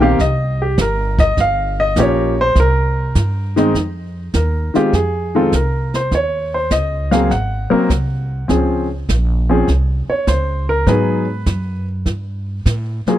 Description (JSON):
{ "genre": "jazz piano trio", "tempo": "101 BPM", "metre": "4/4", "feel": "swing 69% on 8ths", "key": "F minor", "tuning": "A4 = 441 Hz", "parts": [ { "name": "clear grand piano", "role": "melody", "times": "0.0-13.2 s", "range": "Eb3 to Gb5", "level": "-16 LUFS", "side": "left 1 dB", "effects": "none" }, { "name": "upright bass", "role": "bass", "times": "0.0-13.1 s", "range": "G1 to A2", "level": "-18 LUFS", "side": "right 1 dB", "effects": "none" }, { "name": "jazz brush drum kit", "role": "drums", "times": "0.2-13.2 s", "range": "brushed snare drum, hi-hat, kick drum, snare drum", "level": "-20 LUFS", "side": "right 1 dB", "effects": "none" } ], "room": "small room reverb", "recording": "dry, close 1970s-style studio recording", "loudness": "-14 LUFS", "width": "side -12 dB against mid", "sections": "0.0-3.7 A section; 3.7-13.2 B section", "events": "grand piano solo 0.0-3.7", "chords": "0.0 Cm7; 1.4 Gm7b5; 2.6 C5; 3.7 Fm7; 6.1 Eb7(no3); 7.3 Ab9; 8.5 Dbmaj7; 10.9 Abm7; 12.1 Gsus2" }